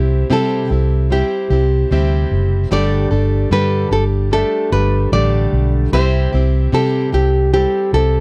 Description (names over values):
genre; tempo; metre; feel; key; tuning
acoustic pop; 75 BPM; 4/4; swing 55% on 16ths; unclear; A4 = 439 Hz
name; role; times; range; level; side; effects
nylon-string guitar; melody; 0.0-8.2 s; G4 to D5; -21 LUFS; equal; none
clear baby grand piano; accompaniment; 0.0-8.2 s; A3 to E5; -31 LUFS; equal; none
fingerpicked plugged-in steel-string acoustic guitar; accompaniment; 0.0-8.2 s; G2 to A4; -22 LUFS; equal; none
vintage muted fingered electric bass; bass; 0.0-8.2 s; F#1 to C3; -18 LUFS; equal; none
room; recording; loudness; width
little or no reverb; dry, close 1970s-style studio recording; -16 LUFS; mono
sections
0.0-8.2 A section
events
none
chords
0.0 C; 2.7 Gsus2; 5.9 C